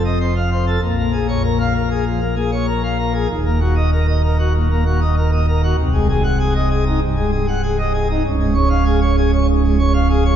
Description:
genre	classical, organ toccata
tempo	97 BPM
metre	4/4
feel	straight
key	Db major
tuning	A4 = 440 Hz
part	pipe organ, plenum	solo	0.0-10.4 s	C1 to Gb5	-15 LUFS	equal	none
room	wet church reverb, RT60 2.7 s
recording	heard from further back in the room, nothing above 7.6 kHz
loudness	-15 LUFS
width	side -9 dB against mid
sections	0.0-10.4 A section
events	none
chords	0.0 F7; 0.8 Bbm7; 3.3 Ebm; 5.8 Ab7/C; 8.2 Db

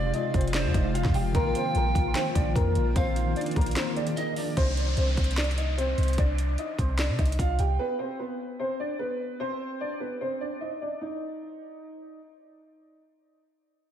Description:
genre	hip hop, trap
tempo	149 BPM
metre	4/4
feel	half-time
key	C minor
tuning	A4 = 443 Hz
part	dark grand piano	melody	0.0-12.2 s	Bb3 to G5	-31 LUFS	equal	wide subtle chorus, diffuse ambient delay
part	bright polished pan flute	second line	0.0-4.6 s	C5 to G5	-35 LUFS	right 2 dB	diffuse ambient delay
part	mellow tine electric piano	accompaniment	0.0-4.6 s	C3 to Ab4	-32 LUFS	equal	medium stereo tremolo
part	granular cloud pad	sustained chords	0.0-4.5 s	C3 to F4	-36 LUFS	left 2 dB	built-in reverb
part	clean 808-style bass	bass	0.0-7.8 s	F1 to C3	-27 LUFS	equal	none
part	trap drum kit	drums	0.1-7.7 s	handclaps, hi-hat, kick drum, snare drum	-28 LUFS	equal	none
part	downlifter	sound effects	4.6-7.8 s	none	-38 LUFS	equal	none
room	moderate lush hall reverb, RT60 1.6 s, digital ambience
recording	dreamy mix soaked in reverb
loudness	-25 LUFS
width	side -10 dB against mid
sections	0.0-4.6 A section; 4.6-11.0 B section; 11.0-13.9 C section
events	break 3.8-4.6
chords	0.0 Fm; 1.3 Bbsus4; 4.6 Cm; 7.8 Bm; 11.0 N.C.

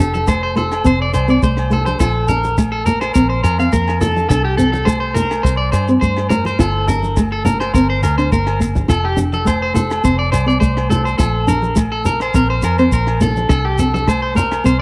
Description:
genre	highlife guitar band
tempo	104 BPM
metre	4/4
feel	straight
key	F major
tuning	A4 = 435 Hz
part	nylon-string guitar	accompaniment	0.0-14.8 s	A3 to F4	-21 LUFS	equal	none
part	electric guitar at the edge of break-up	arpeggios	0.0-14.8 s	G4 to F5	-21 LUFS	equal	spring reverb, tape echo
part	vintage muted fingered electric bass	bass	0.0-14.8 s	F1 to G2	-22 LUFS	equal	none
part	shekere	percussion	0.1-14.8 s	none	-25 LUFS	equal	none
part	congas	percussion	0.2-14.5 s	none	-26 LUFS	equal	none
part	compact cocktail drum kit	drums	0.3-14.8 s	hi-hat, kick drum, rim click	-21 LUFS	equal	none
part	agogo bells	percussion	0.3-14.7 s	none	-32 LUFS	equal	none
room	small room ambience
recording	dry, close 1970s-style studio recording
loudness	-16 LUFS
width	mono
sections	0.0-14.8 A section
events	none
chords	0.0 F6; 2.0 Bbsus2; 4.3 C5; 6.6 Gm; 8.9 F6; 11.2 Bbsus2; 13.5 C5

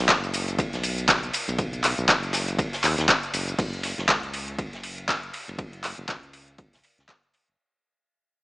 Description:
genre	deep house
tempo	120 BPM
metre	4/4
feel	swing 58% on 16ths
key	unclear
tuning	A4 = 440 Hz
part	round analog bass	bass	0.0-7.6 s	F#1 to D#2	-32 LUFS	equal	sidechain pumping
part	deep house drum kit	drums	0.1-7.6 s	crash cymbal, handclaps, hi-hat, shaker	-23 LUFS	equal	overdrive
part	electronic kick drum	drums	0.1-7.2 s	none	-29 LUFS	equal	none
part	warm soul drum kit	drums	0.1-7.5 s	ride cymbal, snare drum	-32 LUFS	equal	sidechain pumping on cymbals, high-pass filter on cymbals, high-pass filter on snare, high-pass filter on room
room	light reverb, small room ambience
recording	small speaker sound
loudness	-22 LUFS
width	side -22 dB against mid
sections	0.0-3.6 A section; 3.6-7.6 B section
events	drop 0.0-3.6; fade-out 3.6-7.6; filter sweep on analog synth bass 3.6-7.6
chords	none

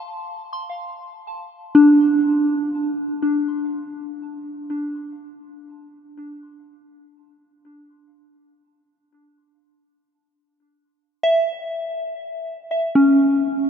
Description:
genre	ambient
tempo	free time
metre	none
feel	none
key	D minor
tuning	A4 = 440 Hz
part	soft synth bell	solo	0.0-13.7 s	C#4 to C6	-18 LUFS	equal	chorus, tape echo
room	wet cathedral reverb, RT60 5.8 s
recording	in a vast, echoing space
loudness	-17 LUFS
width	side -8 dB against mid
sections	0.0-1.2 A section; 1.2-13.7 B section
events	none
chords	0.0 F; 1.2 Dm7; 7.1 N.C.

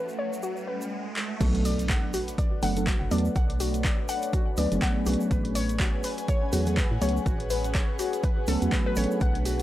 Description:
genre	deep house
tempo	123 BPM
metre	4/4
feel	swing 58% on 16ths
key	A major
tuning	A4 = 442 Hz
part	deep dark ambient pad	sustained chords	0.0-9.6 s	A3 to G#5	-37 LUFS	equal	chorus, built-in reverb, sidechain pumping
part	warbly dusty pluck	arpeggios	0.0-9.5 s	F#4 to F#5	-33 LUFS	left 4 dB	chorus, phaser, sidechain pumping, tape echo
part	riser and impact	sound effects	0.0-3.4 s	none	-37 LUFS	right 1 dB	none
part	airy breathy pad	texture	0.0-9.6 s	A3 to G#5	-39 LUFS	equal	chorus, phaser, sidechain pumping
part	string machine, violins	texture	0.0-0.9, 9.2-9.6 s	none	barely audible	none	none
part	egg shaker	percussion	0.1-9.6 s	none	-45 LUFS	right 2 dB	none
part	punchy analog drum machine	drums	1.2-9.6 s	crash cymbal, handclaps, hi-hat	-34 LUFS	equal	overdrive
part	mellow FM electric piano	stabs	1.4-9.6 s	F#3 to B4	-29 LUFS	right 1 dB	chorus, phaser, sidechain pumping, tape echo
part	organ-like FM bass	bass	1.4-9.6 s	F#1 to A2	-29 LUFS	equal	sidechain pumping
part	electronic kick drum	drums	1.4-9.3 s	none	-27 LUFS	equal	overdrive
room	little or no reverb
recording	dry, gritty hardware recording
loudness	-24 LUFS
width	side -14 dB against mid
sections	0.0-1.4 A section; 1.4-9.6 B section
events	riser 0.0-1.4; drum fill 1.2; drop 1.4-9.6; impact 1.4-3.4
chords	0.0 A69; 1.4 Bm7; 5.3 Amaj13

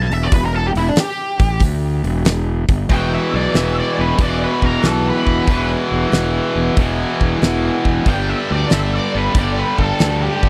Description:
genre	blues rock power trio and southern rock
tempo	93 BPM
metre	4/4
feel	swing 68% on 8ths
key	E minor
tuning	A4 = 439 Hz
part	octave-fuzz lead guitar	melody	0.0-10.5 s	D4 to A5	-25 LUFS	equal	wah, distortion
part	fuzz fingered electric bass	bass	0.0-10.5 s	E1 to D2	-22 LUFS	equal	overdrive
part	huge arena drum kit	drums	0.1-10.5 s	hi-hat, kick drum, snare drum	-19 LUFS	equal	none
part	tight distorted guitar	riff	2.9-10.5 s	E2 to G3	-21 LUFS	equal	distortion
room	little or no reverb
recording	dry, close 1970s-style studio recording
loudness	-17 LUFS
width	mono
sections	0.0-2.9 A section; 2.9-10.5 B section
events	lead electric guitar solo 0.0-2.9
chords	0.0 Em; 2.9 E5; 8.1 G5

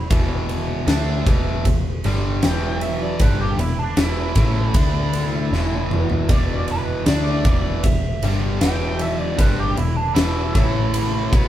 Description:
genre	blues rock power trio and southern rock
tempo	78 BPM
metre	4/4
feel	straight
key	unclear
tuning	A4 = 440 Hz
part	biting lead guitar	melody	0.0-11.5 s	D4 to G5	-27 LUFS	right 2 dB	wah, overdrive
part	cranked stack guitar	riff	0.0-11.5 s	E2 to D4	-24 LUFS	equal	overdrive
part	overdriven picked electric bass	bass	0.0-11.5 s	E1 to D2	-23 LUFS	equal	none
part	huge arena drum kit	drums	0.1-11.5 s	kick drum, ride cymbal, snare drum, toms	-20 LUFS	equal	none
room	moderate large studio reverb, RT60 1.4 s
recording	band playing live in one room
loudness	-17 LUFS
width	side -12 dB against mid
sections	0.0-11.5 A section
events	drum fill 5.5-6.3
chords	0.0 E5; 4.7 D5; 5.5 E5; 10.5 A5

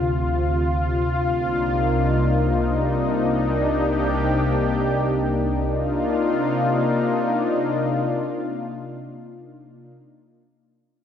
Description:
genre	amapiano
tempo	free time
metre	none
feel	none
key	C minor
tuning	A4 = 440 Hz
part	lush unison pad	sustained chords	0.0-9.9 s	C2 to G4	-20 LUFS	left 1 dB	chorus
room	moderate lush hall reverb, RT60 2.2 s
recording	none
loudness	-19 LUFS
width	side -8 dB against mid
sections	0.0-5.7 A section; 5.7-10.0 B section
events	none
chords	0.0 Dm7; 1.4 Cm11

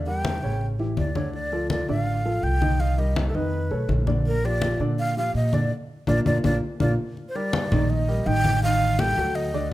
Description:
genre	Afro-Cuban jazz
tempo	165 BPM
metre	4/4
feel	straight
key	Bb major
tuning	A4 = 439 Hz
part	warm baby grand piano	accompaniment	0.0-9.7 s	Db3 to Eb5	-28 LUFS	equal	none
part	upright bass	bass	0.0-9.7 s	A1 to Bb2	-25 LUFS	equal	none
part	breathy mellow silver concert flute	melody	0.1-9.7 s	A4 to G5	-27 LUFS	right 1 dB	none
part	congas	percussion	0.1-9.7 s	none	-28 LUFS	left 2 dB	none
room	moderate large studio reverb, RT60 1.4 s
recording	close, detailed microphones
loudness	-21 LUFS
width	side -15 dB against mid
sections	0.0-7.2 A section; 7.2-9.7 B section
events	band accent 5.7-7.2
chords	0.0 Edim; 0.6 A7; 1.3 Dm7; 2.8 Cm7; 3.5 Faug7; 4.3 Bb6; 6.4 Bb; 7.2 Ebmaj7; 8.6 F13/A

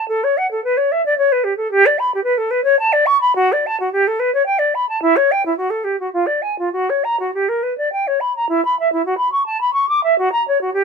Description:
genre	classical, baroque-style fantasia for unaccompanied flute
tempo	96-112 BPM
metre	3/4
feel	rubato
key	unclear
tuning	A4 = 442 Hz
part	silver concert flute	solo	0.0-10.8 s	E4 to D6	-15 LUFS	equal	none
room	little or no reverb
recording	close, detailed microphones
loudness	-15 LUFS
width	side -5 dB against mid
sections	0.0-8.5 A section; 8.5-10.8 B section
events	none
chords	none

